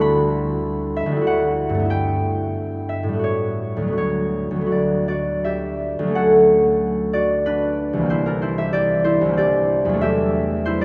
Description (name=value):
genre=classical, solo harp piece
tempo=80-97 BPM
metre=3/4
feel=rubato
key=unclear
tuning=A4 = 440 Hz
part: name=concert harp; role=solo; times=0.0-10.8 s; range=C2 to C6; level=-20 LUFS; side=equal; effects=none
room=wet cathedral reverb, RT60 5.2 s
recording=heard from further back in the room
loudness=-20 LUFS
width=mono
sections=0.0-6.2 A section; 6.2-10.8 A section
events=none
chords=0.0 Em9/D; 1.9 G69; 3.2 A13; 6.2 Dmaj7; 8.1 C9; 10.0 Em11